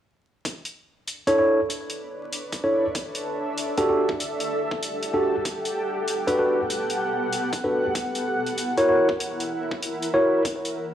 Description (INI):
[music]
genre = glitch hop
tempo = 96 BPM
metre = 4/4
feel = swing 64% on 16ths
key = B minor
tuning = A4 = 440 Hz
[part]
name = electronic hi-hat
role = drums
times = 0.5-10.7 s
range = none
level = -31 LUFS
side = left 1 dB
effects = overdrive, studio reverb
[part]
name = electronic kick drum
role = drums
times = 0.5-10.6 s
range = none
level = -32 LUFS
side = equal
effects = overdrive, high-pass filter on kick, studio reverb
[part]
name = granular cloud pad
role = texture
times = 2.1-10.9 s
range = B3 to F#5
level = -28 LUFS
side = equal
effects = built-in reverb, sidechain pumping
[part]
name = mellow tine electric piano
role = stabs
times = 1.3-10.4 s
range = D4 to C#5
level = -22 LUFS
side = equal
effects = vintage 12-bit sampler grit, sidechain pumping, low-pass filter, analog delay
[sound]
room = moderate digital room reverb, RT60 1.2 s, digital ambience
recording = dry, gritty hardware recording, vinyl crackle, small room ambience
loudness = -22 LUFS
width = side -10 dB against mid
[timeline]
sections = 0.5-10.9 A section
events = none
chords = 0.5 Bm11; 3.0 Em11; 5.5 Gmaj9; 8.0 F#7